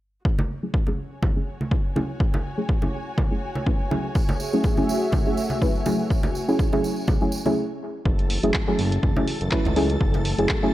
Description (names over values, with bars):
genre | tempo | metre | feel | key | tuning
deep house | 123 BPM | 4/4 | swing 55% on 16ths | F# minor | A4 = 441 Hz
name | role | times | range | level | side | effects
electronic kick drum | drums | 0.2-10.6 s | none | -23 LUFS | equal | vintage 12-bit sampler grit
muted studio string section | texture | 0.2-7.6 s | F#4 to G#5 | -36 LUFS | left 1 dB | sidechain pumping
congas | percussion | 0.4-10.2 s | none | -31 LUFS | right 1 dB | none
deep mellow chord stab | stabs | 0.6-10.7 s | F#3 to B4 | -25 LUFS | equal | chorus, cassette tape, analog delay
tambourine | percussion | 4.1-7.5 s | none | -38 LUFS | right 3 dB | none
warm analog pad | sustained chords | 4.2-10.7 s | E3 to E5 | -30 LUFS | equal | chorus, sidechain pumping
smooth synth bass | bass | 8.1-10.5 s | F#1 to C#2 | -25 LUFS | equal | sidechain pumping
string machine, violins | texture | 8.1-10.7 s | A4 to A6 | -35 LUFS | equal | ensemble chorus, sidechain pumping
punchy analog drum machine | drums | 8.2-10.6 s | handclaps, hi-hat | -30 LUFS | equal | low-pass filter on hats, vintage 12-bit sampler grit, low-pass filter on snare, low-pass filter on room
room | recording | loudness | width
little or no reverb | none | -21 LUFS | side -15 dB against mid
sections
0.3-8.1 A section; 8.1-10.7 B section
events
fade-in on string section 0.3-8.1; filter sweep on synth stab 0.3-8.1; stop 7.6-8.1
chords
0.3 F#m9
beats
| 0.25 0.74 1.23 1.71 | 2.20 2.69 3.18 3.67 | 4.15 4.64 5.13 5.62 | 6.10 6.59 7.08 7.57 | 8.06 8.54 9.03 9.52 | 10.01 10.49